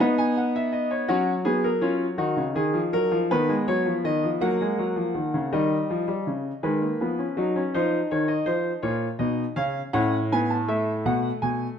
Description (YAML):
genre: classical, baroque-style 3-part fugue for grand piano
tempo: 54 BPM (dotted quarters)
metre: 6/8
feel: straight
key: B major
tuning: A4 = 435 Hz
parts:
  - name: clear concert grand piano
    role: solo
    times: 0.0-11.8 s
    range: A2 to A5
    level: -22 LUFS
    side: equal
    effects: none
room: wet stone room reverb, RT60 1.3 s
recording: close, detailed microphones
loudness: -22 LUFS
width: side -8 dB against mid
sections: 0.0-5.5 A section; 5.5-11.8 B section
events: none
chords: 0.0 B; 1.1 F#; 2.2 D#m; 3.3 B/D#; 4.4 F#; 5.5 D#7; 6.6 G#m/D#; 7.8 F5; 8.9 A#m; 10.0 F#m/A; 11.1 B5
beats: | 1.09 2.20 | 3.31 4.41 | 5.53 6.64 | 7.75 8.86 | 9.95 11.06